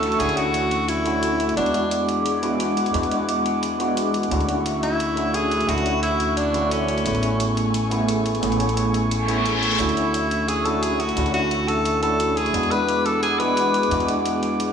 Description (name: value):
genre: liquid drum and bass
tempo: 175 BPM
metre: 4/4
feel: straight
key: D lydian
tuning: A4 = 441 Hz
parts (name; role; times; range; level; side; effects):
- clear tenor saxophone; melody; 0.0-2.0, 4.8-7.4, 9.8-14.1 s; C#4 to B4; -23 LUFS; left 1 dB; digital delay
- overdriven tine electric piano; accompaniment; 0.0-14.7 s; D3 to G#4; -23 LUFS; equal; phaser, digital delay
- airy breathy pad; sustained chords; 0.0-14.7 s; A3 to D6; -27 LUFS; right 2 dB; chorus, phaser
- upright bass; bass; 0.0-14.7 s; A1 to E2; -29 LUFS; equal; none
- electronic hi-hat; drums; 0.0-14.7 s; none; -33 LUFS; right 1 dB; none
- downlifter and reverse cymbal; sound effects; 0.0-1.6, 9.2-9.8 s; none; -28 LUFS; left 3 dB; none
room: moderate lush hall reverb, RT60 2.1 s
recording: studio reverb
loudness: -19 LUFS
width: side -7 dB against mid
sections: 0.0-14.7 A section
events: reverse cymbal 9.2-9.8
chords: 0.0 Dmaj9; 1.6 E9; 4.3 Dmaj9; 7.1 Amaj7; 9.8 Dmaj9; 12.5 E9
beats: | 0.20 0.54 0.88 1.23 | 1.57 1.91 2.26 2.60 | 2.94 3.28 3.63 3.97 | 4.31 4.66 5.00 5.34 | 5.68 6.03 6.37 6.71 | 7.06 7.40 7.74 8.08 | 8.43 8.77 9.11 9.46 | 9.80 10.14 10.48 10.83 | 11.17 11.51 11.86 12.20 | 12.54 12.88 13.23 13.57 | 13.91 14.26 14.60